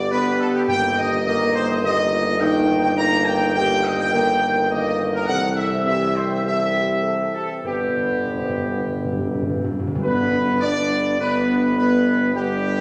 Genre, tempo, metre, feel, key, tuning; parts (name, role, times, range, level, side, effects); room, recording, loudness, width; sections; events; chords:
classical; 104 BPM; 4/4; straight; A4 = 440 Hz
clear trumpet section; melody; 0.0-12.8 s; G4 to Bb5; -24 LUFS; equal
dark French horn section; sustained chords; 0.0-12.8 s; G3 to C5; -27 LUFS; equal
clear tuba; bass; 0.0-12.8 s; G1 to C2; -28 LUFS; equal
warm trombone section; sustained chords; 0.1-12.8 s; D3 to C4; -28 LUFS; equal
timpani; percussion; 0.7-1.5, 7.6-10.0 s; G2; -30 LUFS; equal
wet scoring stage reverb, RT60 1.6 s; -20 LUFS; mono
0.0-10.0 A section; 10.0-12.8 B section
timpani fill 7.6-10.0
0.0 G; 0.7 Eb/G; 5.3 C; 7.6 G